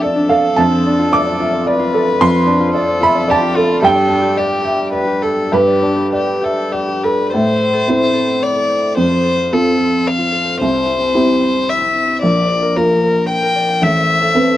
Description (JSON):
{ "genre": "neoclassical piano and strings", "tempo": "110 BPM", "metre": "3/4", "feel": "rubato", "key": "unclear", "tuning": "A4 = 438 Hz", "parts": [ { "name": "warm violin", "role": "melody", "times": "0.0-14.6 s", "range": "F4 to G5", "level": "-17 LUFS", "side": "left 3 dB", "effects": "none" }, { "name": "warm upright piano", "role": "accompaniment", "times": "0.0-14.6 s", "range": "A1 to D6", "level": "-14 LUFS", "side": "right 1 dB", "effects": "none" }, { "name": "concert harp", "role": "arpeggios", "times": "0.0-14.6 s", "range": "C4 to Bb5", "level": "-24 LUFS", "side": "left 2 dB", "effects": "none" } ], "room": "light reverb", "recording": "worn, warbling old tape, cassette tape, warbly pitch drift", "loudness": "-12 LUFS", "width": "side -13 dB against mid", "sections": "0.0-7.3 A section; 7.3-14.6 B section", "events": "none", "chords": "0.0 Dm/F; 0.6 F6; 3.8 Gadd9; 7.3 Am; 9.0 F; 10.6 C; 12.2 Bb; 13.8 Amadd9" }